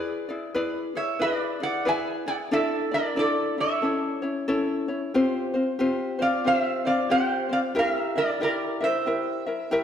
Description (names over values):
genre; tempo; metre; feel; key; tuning
Hawaiian; 92 BPM; 4/4; swing 61% on 8ths; unclear; A4 = 440 Hz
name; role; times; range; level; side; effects
ukulele; accompaniment; 0.0-9.8 s; C4 to E5; -26 LUFS; left 2 dB; none
lap resonator guitar; melody; 1.0-9.8 s; A4 to G#5; -25 LUFS; right 2 dB; none
room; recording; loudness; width
moderate scoring stage reverb, RT60 1.4 s; none; -23 LUFS; side -9 dB against mid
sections
0.0-9.8 A section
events
none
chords
0.0 E7; 2.5 Asus4; 3.8 A; 5.1 Csus4; 7.8 Edim